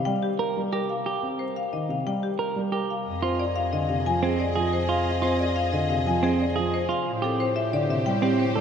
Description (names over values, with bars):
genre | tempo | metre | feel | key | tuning
classical, minimalist pattern music | 180 BPM | 6/4 | straight | F dorian from 3.1 s | A4 = 441 Hz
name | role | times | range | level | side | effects
marimba with hard mallets | melody | 0.0-8.6 s | G4 to Ab5 | -28 LUFS | left 5 dB | none
dark grand piano | accompaniment | 0.0-8.6 s | C3 to C4 | -28 LUFS | right 1 dB | none
clean electric guitar | arpeggios | 0.4-8.6 s | C4 to Bb4 | -29 LUFS | right 5 dB | none
rich symphonic string section | sustained chords | 3.1-8.6 s | G4 to Eb5 | -33 LUFS | left 1 dB | none
warm bass clarinet | bass | 3.1-8.6 s | F2 to A2 | -29 LUFS | equal | none
room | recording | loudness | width
wet cathedral reverb, RT60 5.9 s | in a vast, echoing space | -23 LUFS | side -7 dB against mid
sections
0.0-3.1 A section; 3.1-8.6 B section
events
none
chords
0.0 C7(no3); 3.1 Fm7; 7.1 Am7